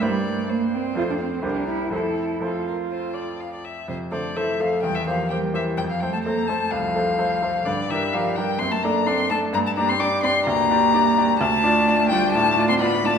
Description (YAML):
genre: quick classical-period movement for piano trio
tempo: 127 BPM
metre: 4/4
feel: straight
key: F major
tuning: A4 = 440 Hz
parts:
  - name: muted violin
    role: melody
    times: 0.0-13.2 s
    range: A4 to D6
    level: -23 LUFS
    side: left 5 dB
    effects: none
  - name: muted cello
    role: second line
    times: 0.0-13.1 s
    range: C3 to F4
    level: -26 LUFS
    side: right 6 dB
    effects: none
  - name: bright grand piano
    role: accompaniment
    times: 0.0-13.2 s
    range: C2 to D5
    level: -24 LUFS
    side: equal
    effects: none
room: wet recital hall reverb, RT60 1.4 s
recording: recorded in a church or concert hall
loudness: -19 LUFS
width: side -7 dB against mid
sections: 0.0-3.9 A section; 3.9-13.2 B section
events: none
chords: 0.0 C7/G; 1.0 F; 1.4 C7; 1.9 F; 4.8 C7/E; 5.8 F; 7.7 Gm; 8.6 D/F#; 9.5 Gm; 11.4 Dm